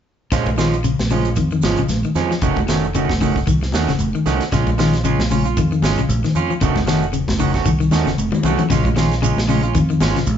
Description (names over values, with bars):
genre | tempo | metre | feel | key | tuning
afrobeat | 114 BPM | 4/4 | swing 56% on 16ths | Bb minor | A4 = 439 Hz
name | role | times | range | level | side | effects
electric guitar at the edge of break-up | arpeggios | 0.3-10.3 s | Db3 to F3 | -20 LUFS | left 5 dB | none
electric guitar at the edge of break-up | stabs | 0.3-10.2 s | Eb3 to Gb4 | -22 LUFS | right 6 dB | none
fingered electric bass | bass | 0.3-10.4 s | F1 to F2 | -21 LUFS | equal | none
tight funk drum kit | drums | 0.3-10.4 s | hi-hat, kick drum, snare drum | -24 LUFS | equal | none
congas | percussion | 0.3-10.4 s | none | -25 LUFS | left 1 dB | none
shekere | percussion | 0.3-10.4 s | none | -30 LUFS | right 4 dB | none
room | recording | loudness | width
moderate large studio reverb, RT60 1.0 s | band playing live in one room, nothing above 7.7 kHz | -15 LUFS | side -9 dB against mid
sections
0.3-10.4 A section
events
drum fill 8.3-8.7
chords
0.3 Bbm7; 2.4 F7b9b13; 4.5 Bbm7; 6.6 F7b9b13; 8.7 Bbm7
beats
| 0.32 0.84 1.37 1.89 | 2.42 2.94 3.47 3.99 | 4.52 5.04 5.57 6.09 | 6.61 7.14 7.66 8.18 | 8.71 9.23 9.75 10.27